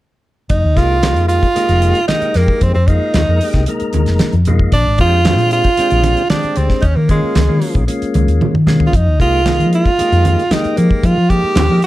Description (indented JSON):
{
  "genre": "electric jazz fusion",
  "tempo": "114 BPM",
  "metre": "4/4",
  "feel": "straight",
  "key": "F minor",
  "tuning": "A4 = 440 Hz",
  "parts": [
    { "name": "edgy tenor saxophone", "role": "melody", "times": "0.5-11.9 s", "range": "Ab3 to G4", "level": "-16 LUFS", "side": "right 2 dB", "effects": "slapback echo" },
    { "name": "hollow-body short-scale fingered electric bass", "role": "bass", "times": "0.5-11.8 s", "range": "F1 to F3", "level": "-14 LUFS", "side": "equal", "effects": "none" },
    { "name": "damped 70s drum kit", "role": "drums", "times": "0.5-11.9 s", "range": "hi-hat, kick drum, snare drum, toms", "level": "-18 LUFS", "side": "equal", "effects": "none" },
    { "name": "congas", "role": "percussion", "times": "0.5-11.7 s", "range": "none", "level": "-21 LUFS", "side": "right 2 dB", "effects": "none" },
    { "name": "percussive tonewheel organ", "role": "accompaniment", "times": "0.8-11.9 s", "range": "Ab3 to Bb4", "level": "-22 LUFS", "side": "left 3 dB", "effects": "slow rotary speaker" }
  ],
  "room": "light reverb",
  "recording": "dark, warm production",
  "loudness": "-11 LUFS",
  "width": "side -16 dB against mid",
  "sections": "0.5-11.9 A section",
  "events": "drum fill 8.4-8.9",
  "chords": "0.5 Fm11; 4.7 Bb13; 6.8 Eb7sus4; 8.9 Fm11"
}